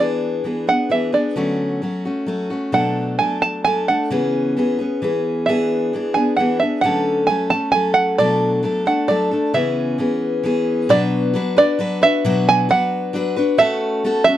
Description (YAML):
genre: acoustic folk duo or small band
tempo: 132 BPM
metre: 3/4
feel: straight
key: unclear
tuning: A4 = 441 Hz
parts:
  - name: open-back banjo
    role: melody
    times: 0.0-14.4 s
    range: D5 to A5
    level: -18 LUFS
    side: right 3 dB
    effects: none
  - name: picked steel-string acoustic guitar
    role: accompaniment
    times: 0.0-14.4 s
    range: B2 to B4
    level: -18 LUFS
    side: left 2 dB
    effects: none
room: light reverb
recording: dark, warm production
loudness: -16 LUFS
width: side -12 dB against mid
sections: 0.0-10.9 A section; 10.9-14.4 B section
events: none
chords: 0.0 E7; 1.4 Dmaj7; 2.7 Bm7; 4.1 C#m7; 5.5 E7; 6.8 Dmaj7; 8.2 Bm7; 9.5 C#m7; 10.9 Bm; 13.6 F#m/A